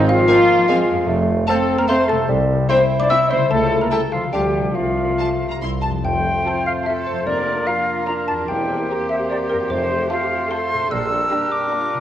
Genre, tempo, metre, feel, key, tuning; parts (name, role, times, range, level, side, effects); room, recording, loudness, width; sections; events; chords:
cinematic; 148 BPM; 3/4; straight; F major; A4 = 441 Hz
xylophone with rubber mallets; melody; 0.0-12.0 s; Bb4 to E6; -27 LUFS; left 2 dB
clear clarinet; second line; 0.0-12.0 s; D4 to E5; -28 LUFS; left 2 dB
warm bassoon; accompaniment; 0.0-12.0 s; G3 to E4; -24 LUFS; right 1 dB
concert harp; arpeggios; 0.0-12.0 s; E2 to Bb4; -28 LUFS; left 7 dB
clear tuba; bass; 0.0-11.2 s; E1 to D2; -29 LUFS; right 3 dB
rich studio double bass section; bass; 0.0-11.2 s; F1 to F2; -27 LUFS; right 3 dB
bright concert flute; second line; 0.1-12.0 s; Bb4 to E6; -24 LUFS; equal
warm French horn section; sustained chords; 0.1-11.9 s; G3 to E5; -22 LUFS; left 1 dB
clear studio cello section; bass; 0.1-12.0 s; F3 to Bb4; -28 LUFS; right 3 dB
rich studio violin section; melody; 0.3-12.0 s; Bb4 to C6; -37 LUFS; left 3 dB
clear studio violin section; second line; 0.3-12.0 s; G4 to C6; -33 LUFS; left 1 dB
rich studio viola section; accompaniment; 0.3-12.0 s; C4 to G4; -32 LUFS; right 1 dB
warm oboe; second line; 6.0-12.0 s; Bb4 to C5; -30 LUFS; right 2 dB
wet scoring stage reverb, RT60 1.6 s; worn, warbling old tape, cassette tape, warbly pitch drift; -16 LUFS; side -11 dB against mid
0.0-6.0 A section; 6.0-12.0 B section
0.0 Fm/Ab; 1.1 F; 2.3 C; 3.5 A7/C#; 4.3 Dm; 4.8 F/C; 6.0 F; 7.3 Bb/F; 8.5 C7/E; 9.7 F; 10.9 Gm/Bb